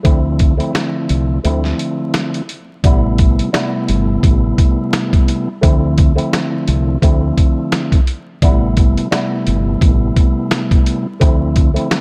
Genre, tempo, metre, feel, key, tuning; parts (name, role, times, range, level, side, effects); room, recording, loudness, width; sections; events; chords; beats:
hip hop, boom-bap hip-hop; 86 BPM; 4/4; swing 56% on 16ths; A minor; A4 = 439 Hz
percussive tonewheel organ; accompaniment; 0.0-12.0 s; C3 to E4; -20 LUFS; equal; fast rotary speaker, high-pass filter, low-pass filter
dusty soul sampler-style drum kit; drums; 0.0-12.0 s; hi-hat, kick drum, snare drum; -16 LUFS; equal
woody fretless electric bass; bass; 0.1-11.8 s; G1 to D2; -19 LUFS; equal
light reverb; dark, warm production, vinyl crackle; -15 LUFS; mono
0.0-2.8 A section; 2.8-12.0 B section
break 1.4-2.8
0.0 Dm9; 2.8 Am9; 5.6 Dm9; 8.4 Am9; 11.2 Dm9
| 0.05 0.75 1.44 2.14 | 2.84 3.54 4.24 4.93 | 5.63 6.33 7.03 7.72 | 8.42 9.12 9.82 10.51 | 11.21 11.91